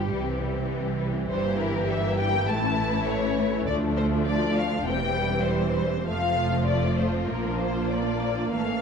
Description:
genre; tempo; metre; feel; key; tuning
quick classical-period movement for string orchestra; 101 BPM; 4/4; straight; unclear; A4 = 440 Hz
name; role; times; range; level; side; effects
rich symphonic violin section; melody; 0.0-8.8 s; G4 to A5; -29 LUFS; left 4 dB; none
warm symphonic violin section; second line; 0.0-8.8 s; G3 to A4; -32 LUFS; left 5 dB; none
rich symphonic viola section; accompaniment; 0.0-8.8 s; E3 to Bb3; -28 LUFS; equal; none
clear symphonic double bass section; bass; 0.0-8.8 s; E1 to D2; -30 LUFS; right 4 dB; none
rich symphonic cello section; bass; 0.0-8.8 s; D2 to C3; -32 LUFS; right 2 dB; none
room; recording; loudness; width
wet recital hall reverb, RT60 1.6 s; dark, warm production; -23 LUFS; side -6 dB against mid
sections
0.0-8.8 A section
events
none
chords
0.1 C; 1.3 Edim/G; 2.5 A; 3.7 Dm; 4.9 C/E; 6.1 F; 7.3 Bb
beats
0.11 0.70 | 1.30 1.89 2.48 3.08 | 3.67 4.27 4.86 5.46 | 6.08 6.67 7.28 7.90 | 8.53

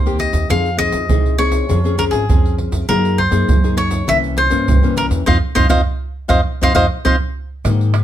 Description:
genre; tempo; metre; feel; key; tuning
samba and choro; 101 BPM; 4/4; straight; F minor; A4 = 443 Hz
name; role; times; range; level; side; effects
cavaquinho; melody; 0.0-7.2 s; Ab4 to F5; -18 LUFS; equal; none
nylon-string guitar; accompaniment; 0.0-8.0 s; G2 to Ab4; -21 LUFS; left 4 dB; none
upright bass; bass; 0.0-8.0 s; Ab1 to Ab2; -18 LUFS; equal; none
egg shaker, pandeiro, surdo and tamborim; percussion; 0.1-8.0 s; none; -18 LUFS; right 2 dB; none
room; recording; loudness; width
light reverb; none; -13 LUFS; side -11 dB against mid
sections
0.0-7.7 A section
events
band accent 5.3-7.7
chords
0.0 Cm7/Eb; 0.5 Fm7; 1.7 Dbmaj7; 2.9 Gb69; 4.1 C7b9; 5.3 F5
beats
| 0.51 1.10 1.70 2.29 | 2.89 3.49 4.08 4.68 | 5.28 5.87 6.47 7.06 | 7.66

